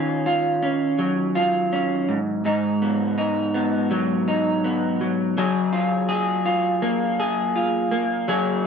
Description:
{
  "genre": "indie pop",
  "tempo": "82 BPM",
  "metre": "4/4",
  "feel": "swing 55% on 16ths",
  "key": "F# major",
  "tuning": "A4 = 440 Hz",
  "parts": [
    { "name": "electric guitar through a small old amp", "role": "solo", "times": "0.0-8.7 s", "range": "G#2 to G#4", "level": "-20 LUFS", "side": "equal", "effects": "analog chorus, vibrato effect" }
  ],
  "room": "moderate studio reverb, RT60 0.7 s",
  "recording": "dark, warm production",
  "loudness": "-20 LUFS",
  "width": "side -6 dB against mid",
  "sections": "0.0-8.7 A section",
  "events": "none",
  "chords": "0.0 D#m9; 2.1 G#m7; 5.4 F#maj9"
}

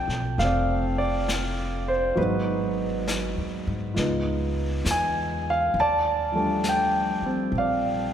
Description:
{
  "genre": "jazz ballad",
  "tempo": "67 BPM",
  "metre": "4/4",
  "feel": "swing 66% on 8ths",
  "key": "unclear",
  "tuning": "A4 = 438 Hz",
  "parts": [
    { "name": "warm grand piano", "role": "accompaniment", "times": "0.0-8.1 s", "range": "F3 to A5", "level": "-24 LUFS", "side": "right 1 dB", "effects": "none" },
    { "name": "upright bass", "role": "bass", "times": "0.0-8.1 s", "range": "F1 to Ab2", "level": "-30 LUFS", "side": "equal", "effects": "none" },
    { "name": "vintage brush drum kit", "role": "drums", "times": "0.1-8.1 s", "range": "brushed snare drum, hi-hat, snare drum", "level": "-34 LUFS", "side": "left 2 dB", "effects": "none" }
  ],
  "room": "wet cathedral reverb, RT60 4.4 s",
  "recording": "recorded in a church or concert hall",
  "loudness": "-22 LUFS",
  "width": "side -9 dB against mid",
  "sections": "0.0-8.1 A section",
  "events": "none",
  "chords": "0.0 Bbmaj7 (rootless); 2.2 Abm7; 4.0 Db9; 5.7 Ebmaj9#11"
}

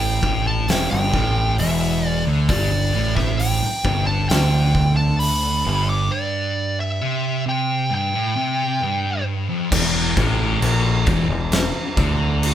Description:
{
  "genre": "stoner and doom metal",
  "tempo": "66 BPM",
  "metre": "4/4",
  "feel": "straight",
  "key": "unclear",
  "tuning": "A4 = 440 Hz",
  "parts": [
    { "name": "fuzz lead guitar", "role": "melody", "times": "0.0-9.2 s", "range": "D5 to D6", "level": "-23 LUFS", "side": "equal", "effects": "distortion" },
    { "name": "thick fuzz guitar", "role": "riff", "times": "0.0-12.5 s", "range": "E2 to D3", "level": "-25 LUFS", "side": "left 6 dB", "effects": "distortion" },
    { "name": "thick fuzz guitar", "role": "riff", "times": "0.0-12.5 s", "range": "E2 to D3", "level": "-25 LUFS", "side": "right 6 dB", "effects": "distortion" },
    { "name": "growling fingered electric bass", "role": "bass", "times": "0.0-12.5 s", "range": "E1 to D2", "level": "-22 LUFS", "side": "equal", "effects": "overdrive" },
    { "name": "oversized low-tuned drum kit", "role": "drums", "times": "0.2-12.5 s", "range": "crash cymbal, hi-hat, kick drum, snare drum", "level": "-22 LUFS", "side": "equal", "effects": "none" }
  ],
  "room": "light reverb",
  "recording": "band playing live in one room",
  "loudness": "-17 LUFS",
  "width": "side -11 dB against mid",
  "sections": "0.0-9.7 A section; 9.7-12.5 B section",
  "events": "break 6.1-9.7",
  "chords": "0.0 Em; 2.5 G5; 9.7 N.C."
}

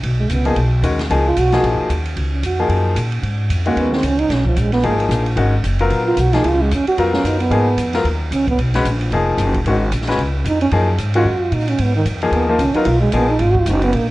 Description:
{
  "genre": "modal jazz",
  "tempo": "224 BPM",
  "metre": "4/4",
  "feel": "swing 58% on 8ths",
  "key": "G# dorian",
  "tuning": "A4 = 438 Hz",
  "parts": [
    { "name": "upright bass", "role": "bass", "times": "0.0-14.1 s", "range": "E#1 to A#2", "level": "-18 LUFS", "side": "equal", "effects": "tube saturation" },
    { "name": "open jazz drum kit", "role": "drums", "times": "0.0-14.0 s", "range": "hi-hat, kick drum, ride cymbal, snare drum", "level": "-27 LUFS", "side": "right 1 dB", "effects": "vintage 12-bit sampler grit" },
    { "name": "trombone with bucket mute", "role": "second line", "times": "0.2-14.1 s", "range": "D#3 to F#4", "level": "-19 LUFS", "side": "right 2 dB", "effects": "none" },
    { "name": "clear baby grand piano", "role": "accompaniment", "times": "0.5-13.3 s", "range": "D#3 to B4", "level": "-20 LUFS", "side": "left 3 dB", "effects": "none" }
  ],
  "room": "moderate spring reverb, RT60 1.6 s",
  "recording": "worn, warbling old tape, cassette tape, warbly pitch drift",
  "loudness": "-14 LUFS",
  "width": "side -18 dB against mid",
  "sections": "0.0-14.1 A section",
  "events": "trombone solo 0.0-14.1",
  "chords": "0.0 G#m69; 5.4 F#; 7.5 G#m69; 9.7 F#/G#; 11.8 G#m69"
}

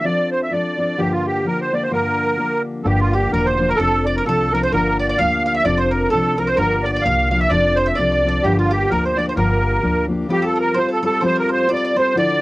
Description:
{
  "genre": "celtic folk, Celtic polka",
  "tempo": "129 BPM",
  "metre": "2/4",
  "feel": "swing 58% on 8ths",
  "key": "unclear",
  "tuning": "A4 = 440 Hz",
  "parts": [
    { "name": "musette accordion", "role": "melody", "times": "0.0-12.4 s", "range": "F4 to F5", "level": "-18 LUFS", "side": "right 1 dB", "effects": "cassette tape" },
    { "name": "fingerpicked steel-string acoustic guitar", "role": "accompaniment", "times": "0.0-12.4 s", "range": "G2 to A4", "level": "-21 LUFS", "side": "left 2 dB", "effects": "cassette tape" },
    { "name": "bowl-back mandolin", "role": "second line", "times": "2.9-12.4 s", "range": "F4 to F5", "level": "-28 LUFS", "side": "right 2 dB", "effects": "cassette tape" },
    { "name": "upright bass", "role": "bass", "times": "2.9-10.2 s", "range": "E1 to D2", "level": "-23 LUFS", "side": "equal", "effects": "none" }
  ],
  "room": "light reverb",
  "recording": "home recording on cassette",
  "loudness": "-16 LUFS",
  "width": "side -19 dB against mid",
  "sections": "0.0-2.9 A section; 2.9-10.3 A section; 10.3-12.4 B section",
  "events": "none",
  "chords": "0.1 F6; 1.0 Gm7; 3.8 F6; 4.7 Gm7; 5.7 F6; 6.6 Gm7; 7.5 F6; 8.4 Gm7; 10.3 Fadd9"
}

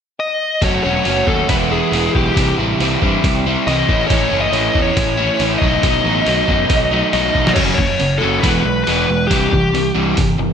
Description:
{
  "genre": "indie rock",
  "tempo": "138 BPM",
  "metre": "4/4",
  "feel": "straight",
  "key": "unclear",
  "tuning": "A4 = 441 Hz",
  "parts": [
    { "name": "smooth overdriven lead guitar", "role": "melody", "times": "0.2-9.9 s", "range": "G4 to D#5", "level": "-18 LUFS", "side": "left 1 dB", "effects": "none" },
    { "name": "crunchy overdriven guitar", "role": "riff", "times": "0.6-10.5 s", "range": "F#2 to F#4", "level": "-17 LUFS", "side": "equal", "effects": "none" },
    { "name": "growling picked electric bass", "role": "bass", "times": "0.6-10.5 s", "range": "E1 to G2", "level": "-22 LUFS", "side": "equal", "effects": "overdrive" },
    { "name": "trip hop sampler-style drum kit", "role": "drums", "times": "0.6-10.3 s", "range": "crash cymbal, hi-hat, kick drum, snare drum", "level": "-20 LUFS", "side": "equal", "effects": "none" }
  ],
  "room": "moderate lush hall reverb, RT60 1.6 s, digital ambience",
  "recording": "bright 1980s-style digital production",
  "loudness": "-13 LUFS",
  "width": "side -7 dB against mid",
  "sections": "0.6-7.6 A section; 7.6-10.5 B section",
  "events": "drum fill 7.4",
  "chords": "0.0 N.C.; 0.6 F#m7; 1.5 E; 2.4 C; 3.9 A; 5.6 B7; 7.6 F#5; 8.4 E; 9.3 C"
}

